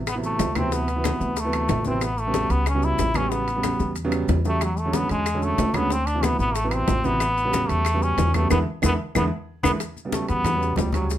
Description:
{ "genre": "Afro-Cuban jazz", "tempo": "185 BPM", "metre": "4/4", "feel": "straight", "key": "unclear", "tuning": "A4 = 440 Hz", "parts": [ { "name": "upright bass", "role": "bass", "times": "0.0-11.2 s", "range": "A1 to E2", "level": "-26 LUFS", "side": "equal", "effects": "none" }, { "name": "trombone with metal mute", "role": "melody", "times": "0.1-11.1 s", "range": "F#3 to E4", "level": "-25 LUFS", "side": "left 1 dB", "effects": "none" }, { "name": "bongos", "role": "percussion", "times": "0.1-11.2 s", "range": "none", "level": "-31 LUFS", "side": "left 9 dB", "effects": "none" }, { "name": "claves", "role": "percussion", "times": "0.1-9.7 s", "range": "none", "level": "-33 LUFS", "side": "left 4 dB", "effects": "none" }, { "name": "congas", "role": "percussion", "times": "0.1-11.2 s", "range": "none", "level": "-30 LUFS", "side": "left 3 dB", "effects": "none" }, { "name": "maracas", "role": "percussion", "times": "0.1-11.2 s", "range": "none", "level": "-38 LUFS", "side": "left 6 dB", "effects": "none" }, { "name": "timbales", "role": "percussion", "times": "0.1-11.1 s", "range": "none", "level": "-33 LUFS", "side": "right 7 dB", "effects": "none" }, { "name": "warm grand piano", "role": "accompaniment", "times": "0.2-11.1 s", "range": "C3 to C#4", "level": "-27 LUFS", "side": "right 3 dB", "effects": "none" } ], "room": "moderate studio reverb, RT60 0.6 s", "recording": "none", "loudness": "-20 LUFS", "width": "side -12 dB against mid", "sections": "0.0-9.8 A section; 9.8-11.2 B section", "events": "drum fill 3.6-4.6, 8.8-9.8; band accent 8.5-9.8; grand piano fill 8.8-9.8; trombone solo 9.8-11.2", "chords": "0.0 D13; 2.0 A13; 4.6 E13; 5.9 D13; 7.2 A13; 8.5 E7; 9.8 Em13", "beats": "0.07 0.40 | 0.72 1.04 1.37 1.69 | 2.02 2.34 2.67 2.99 | 3.31 3.64 3.96 4.29 | 4.61 4.94 5.26 5.58 | 5.91 6.23 6.56 6.88 | 7.21 7.53 7.86 8.18 | 8.51 8.83 9.16 9.48 | 9.81 10.13 10.46 10.78 | 11.11" }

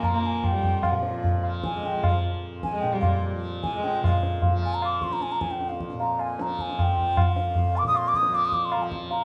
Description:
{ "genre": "indian classical, Hindustani", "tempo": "152 BPM", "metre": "4/4", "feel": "straight", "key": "F raga bageshri", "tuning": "A4 = 440 Hz", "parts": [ { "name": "bansuri", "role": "melody", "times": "0.0-9.2 s", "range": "F5 to Eb6", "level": "-29 LUFS", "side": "equal", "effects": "none" }, { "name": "clear sarangi", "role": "second line", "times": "0.0-4.1 s", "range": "F3 to Bb3", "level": "-34 LUFS", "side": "equal", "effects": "none" }, { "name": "tanpura", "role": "drone", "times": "0.0-9.2 s", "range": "F2 to F3", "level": "-36 LUFS", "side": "equal", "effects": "none" }, { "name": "tabla", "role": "percussion", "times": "0.0-9.2 s", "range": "none", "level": "-28 LUFS", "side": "equal", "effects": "none" } ], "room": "moderate large studio reverb, RT60 1.0 s", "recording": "band playing live in one room, nothing above 10.4 kHz", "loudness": "-25 LUFS", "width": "mono", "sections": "0.0-4.0 A section; 4.0-9.2 B section", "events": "speeding up 0.0-9.2", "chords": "none", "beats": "0.03 0.43 | 0.83 1.23 1.63 2.03 | 2.43 2.83 3.23 3.63 | 4.02 4.42 4.81 5.21 | 5.60 5.99 6.38 6.78 | 7.17 7.56 7.95 8.33 | 8.72 9.11" }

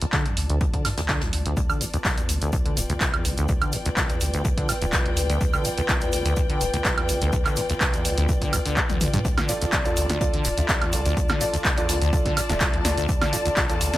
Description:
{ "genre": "acid house", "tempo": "125 BPM", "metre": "4/4", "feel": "straight", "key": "unclear", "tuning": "A4 = 441 Hz", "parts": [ { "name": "acid bass, saw", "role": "riff", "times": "0.0-14.0 s", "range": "D1 to D3", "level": "-27 LUFS", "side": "equal", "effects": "lush chorus, sidechain pumping, tape echo" }, { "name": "jazz brush drum kit", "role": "drums", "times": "0.0-13.9 s", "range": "hi-hat, snare drum", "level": "-36 LUFS", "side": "left 2 dB", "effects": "sidechain pumping on hats, high-pass filter on hats, high-pass filter on snare, high-pass filter on room" }, { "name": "punchy analog drum machine", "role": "drums", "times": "0.0-14.0 s", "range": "handclaps, hi-hat, snare drum, toms, woodblock", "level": "-26 LUFS", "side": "right 1 dB", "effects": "none" }, { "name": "rich studio string section", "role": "texture", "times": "0.0-14.0 s", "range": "F4 to A5", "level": "-32 LUFS", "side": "left 2 dB", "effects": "sidechain pumping" }, { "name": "electronic kick drum", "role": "drums", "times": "0.1-13.7 s", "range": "none", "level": "-26 LUFS", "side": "equal", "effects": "none" }, { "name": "warm sub bass", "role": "bass", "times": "0.4-14.0 s", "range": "D1 to G2", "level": "-30 LUFS", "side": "equal", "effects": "none" }, { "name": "dark analog pad", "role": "sustained chords", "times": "1.6-14.0 s", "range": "B4 to D5", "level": "-32 LUFS", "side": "left 1 dB", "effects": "chorus, sidechain pumping" }, { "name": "egg shaker", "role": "percussion", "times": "1.6-14.0 s", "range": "none", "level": "-36 LUFS", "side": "left 3 dB", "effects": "none" }, { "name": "warm concert grand piano", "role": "stabs", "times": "9.5-13.9 s", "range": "F4 to E5", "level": "-30 LUFS", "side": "right 3 dB", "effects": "tape echo" } ], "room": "little or no reverb", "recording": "dry, gritty hardware recording", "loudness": "-20 LUFS", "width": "side -15 dB against mid", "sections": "0.0-9.2 A section; 9.2-14.0 B section", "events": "fade-in on string section 0.0-9.2; filter sweep on acid bass 0.0-9.2; drum fill 8.9-9.2; drop 9.2-14.0", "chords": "0.0 Dm", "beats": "0.13 0.61 1.09 | 1.57 2.05 2.53 3.01 | 3.49 3.97 4.45 4.93 | 5.41 5.89 6.37 6.85 | 7.33 7.81 8.29 8.77 | 9.25 9.73 10.21 10.69 | 11.17 11.65 12.13 12.61 | 13.09 13.57" }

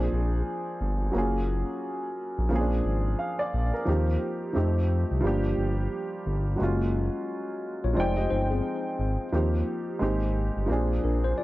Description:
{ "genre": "lo-fi hip hop", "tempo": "88 BPM", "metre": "4/4", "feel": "swing 62% on 16ths", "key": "unclear", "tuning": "A4 = 440 Hz", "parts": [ { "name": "dark upright piano", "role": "accompaniment", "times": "0.0-11.4 s", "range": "F3 to G5", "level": "-28 LUFS", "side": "right 1 dB", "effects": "cassette tape" }, { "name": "smooth synth bass", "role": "bass", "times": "0.0-11.3 s", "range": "F1 to F2", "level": "-26 LUFS", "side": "equal", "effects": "none" }, { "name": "mellow tine electric piano", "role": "second line", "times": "7.8-11.4 s", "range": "C4 to Eb5", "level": "-31 LUFS", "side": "left 4 dB", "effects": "medium stereo tremolo, tape echo" } ], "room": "light reverb", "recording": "dark, warm production", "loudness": "-25 LUFS", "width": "side -17 dB against mid", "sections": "0.0-11.4 A section", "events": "none", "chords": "0.0 Bb7; 1.1 Gbmaj7; 2.5 Bb7; 3.9 Eb6; 4.6 F7; 5.2 Gm7; 6.6 Gbmaj7; 8.0 Fm7; 9.3 Eb6; 10.0 Abmaj7; 10.7 Bb7", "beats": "0.46 | 1.14 1.82 2.51 3.19 | 3.87 4.55 5.23 5.92 | 6.60 7.28 7.96 8.64 | 9.32 10.01 10.69 11.37" }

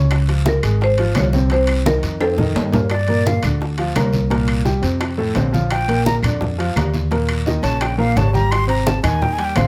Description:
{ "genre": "Afro-Cuban jazz", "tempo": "171 BPM", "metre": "4/4", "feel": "straight", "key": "G minor", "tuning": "A4 = 440 Hz", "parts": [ { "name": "warm baby grand piano", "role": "accompaniment", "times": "0.0-9.7 s", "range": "A2 to C6", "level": "-24 LUFS", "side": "equal", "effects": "none" }, { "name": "upright bass", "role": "bass", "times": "0.0-9.7 s", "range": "Ab1 to G2", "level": "-22 LUFS", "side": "equal", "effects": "none" }, { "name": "bongos", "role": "percussion", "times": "0.1-9.7 s", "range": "none", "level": "-30 LUFS", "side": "equal", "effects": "none" }, { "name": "claves", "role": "percussion", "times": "0.1-9.7 s", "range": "none", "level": "-34 LUFS", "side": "equal", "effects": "none" }, { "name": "congas", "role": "percussion", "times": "0.1-9.7 s", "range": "none", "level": "-25 LUFS", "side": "equal", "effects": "none" }, { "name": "guiro", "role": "percussion", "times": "0.1-9.7 s", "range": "none", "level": "-37 LUFS", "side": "equal", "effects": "none" }, { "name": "timbales", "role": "percussion", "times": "0.1-9.7 s", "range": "none", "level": "-30 LUFS", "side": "equal", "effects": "none" }, { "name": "buzzing marimba with hard mallets", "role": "melody", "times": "0.5-2.7 s", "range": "A4 to Db5", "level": "-23 LUFS", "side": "equal", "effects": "plate reverb" }, { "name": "breathy bright concert flute", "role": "second line", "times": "2.9-3.4, 5.7-9.7 s", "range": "D5 to C6", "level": "-24 LUFS", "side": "equal", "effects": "none" } ], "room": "light reverb", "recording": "none", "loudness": "-18 LUFS", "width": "mono", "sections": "0.0-2.9 A section; 2.9-9.7 B section", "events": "drum fill 1.9-2.9; flute solo 2.9-9.7", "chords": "0.1 Db6; 1.5 Cm7; 2.2 F9; 2.9 Gm7; 4.3 C5; 5.0 F; 5.7 Bb6; 7.1 Eb7; 8.5 Abmaj7", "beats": "| 0.11 0.46 0.81 1.16 | 1.51 1.86 2.21 2.56 | 2.91 3.26 3.61 3.96 | 4.31 4.66 5.01 5.36 | 5.71 6.06 6.41 6.76 | 7.11 7.46 7.81 8.16 | 8.51 8.87 9.21 9.57" }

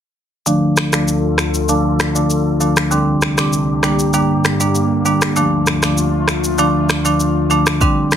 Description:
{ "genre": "afrobeats", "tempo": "98 BPM", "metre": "4/4", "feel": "straight", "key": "D minor", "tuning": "A4 = 445 Hz", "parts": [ { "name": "marimba with medium hard mallets", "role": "accompaniment", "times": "0.5-8.2 s", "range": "D3 to D4", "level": "-15 LUFS", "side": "right 1 dB", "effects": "low-pass filter" }, { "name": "airy breathy pad", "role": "sustained chords", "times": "0.5-8.2 s", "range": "C2 to A4", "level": "-21 LUFS", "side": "left 3 dB", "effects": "chorus, low-pass filter" }, { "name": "deep house drum kit", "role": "drums", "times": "0.5-8.2 s", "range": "finger snaps, kick drum, rim click, shaker", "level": "-18 LUFS", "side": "equal", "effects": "soft clipping on snare" } ], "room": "moderate studio reverb, RT60 0.6 s", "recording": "dense, heavily limited modern master", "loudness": "-13 LUFS", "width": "side -9 dB against mid", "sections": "0.5-8.2 A section", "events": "filter sweep 0.5-8.2", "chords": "0.5 Dm; 2.9 Csus2; 3.8 Gm; 5.4 Dm", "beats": "| 0.47 1.08 1.69 2.30 | 2.91 3.53 4.14 4.75 | 5.36 5.97 6.59 7.20 | 7.81" }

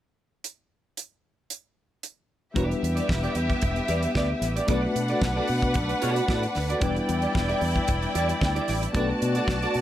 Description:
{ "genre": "disco", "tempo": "113 BPM", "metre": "4/4", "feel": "straight", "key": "E minor", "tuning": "A4 = 440 Hz", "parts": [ { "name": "damped 70s drum kit", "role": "drums", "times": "0.4-9.8 s", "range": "hi-hat, kick drum, snare drum", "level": "-29 LUFS", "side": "right 1 dB", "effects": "none" }, { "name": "tine electric piano", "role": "accompaniment", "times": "2.5-9.8 s", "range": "G3 to B4", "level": "-31 LUFS", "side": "left 3 dB", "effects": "medium stereo tremolo" }, { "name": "rich studio string section", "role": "second line", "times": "2.6-9.8 s", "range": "B3 to A5", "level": "-28 LUFS", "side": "left 1 dB", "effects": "analog delay" }, { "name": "clean electric guitar", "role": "accompaniment", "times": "2.6-9.8 s", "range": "E4 to D5", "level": "-31 LUFS", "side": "right 3 dB", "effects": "ensemble chorus" }, { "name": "fingered electric bass", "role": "bass", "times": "2.6-9.8 s", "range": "E1 to B2", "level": "-28 LUFS", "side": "equal", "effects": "none" } ], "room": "light reverb, studio reverb", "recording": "none", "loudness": "-23 LUFS", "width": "side -12 dB against mid", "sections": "0.4-2.6 A section; 2.6-9.8 B section", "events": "none", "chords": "0.4 N.C.; 2.6 Em7; 4.7 Bm7; 6.8 Em7; 8.9 Bm7", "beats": "| 0.43 0.96 1.50 2.03 | 2.56 3.09 3.62 4.16 | 4.69 5.22 5.75 6.28 | 6.82 7.35 7.88 8.41 | 8.94 9.47" }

